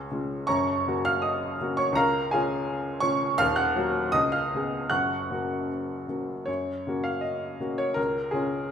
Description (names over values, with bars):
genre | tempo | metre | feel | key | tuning
classical, romantic character piece for solo piano | 75-86 BPM | 2/4 | rubato | F# major | A4 = 440 Hz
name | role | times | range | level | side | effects
clear upright piano | solo | 0.0-8.7 s | D#1 to F#6 | -24 LUFS | equal | none
room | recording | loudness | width
wet recital hall reverb, RT60 1.3 s | minimal, uncompressed stereo recording | -24 LUFS | side -8 dB against mid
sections
0.0-6.5 A section; 6.5-8.7 B section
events
none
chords
0.5 F#; 2.0 C#; 3.4 D#m; 4.1 C#7; 4.9 F#; 8.0 C#